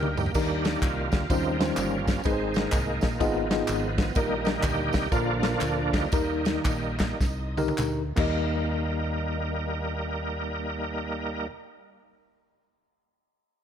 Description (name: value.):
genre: uptempo gospel.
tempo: 94-126 BPM.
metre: 4/4.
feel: swing 64% on 8ths.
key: Eb major.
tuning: A4 = 440 Hz.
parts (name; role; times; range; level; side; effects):
tine electric piano; accompaniment; 0.0-11.5 s; Eb2 to Eb5; -30 LUFS; left 2 dB; overdrive, fast stereo tremolo.
bright tonewheel organ; sustained chords; 0.0-11.5 s; Db3 to Bb4; -30 LUFS; right 2 dB; slow rotary speaker, overdrive, chorus vibrato.
fingered electric bass; bass; 0.0-11.5 s; G1 to Eb2; -32 LUFS; equal; none.
warm soul drum kit; drums; 0.0-8.3 s; crash cymbal, kick drum, ride cymbal, snare drum, toms; -28 LUFS; equal; none.
tambourine and handclaps; percussion; 0.2-8.8 s; none; -38 LUFS; left 1 dB; none.
room: light reverb, studio reverb.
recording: none.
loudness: -24 LUFS.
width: side -9 dB against mid.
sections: 0.4-8.4 A section; 8.4-13.5 B section.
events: drum fill 0.0-0.4, 7.2-8.4; tonewheel organ solo 0.4-8.4; slowing down 4.2-8.4.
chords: 0.4 Eb; 1.3 Eb13; 2.3 Ab; 3.2 Abm6; 4.2 Eb/Bb; 5.1 Bb; 6.1 Eb.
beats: | 0.35 0.83 1.30 1.78 | 2.25 2.73 3.20 3.68 | 4.16 4.63 5.12 5.61 | 6.12 6.65 7.20 7.79 | 8.40 9.04 9.67 10.31 | 10.94.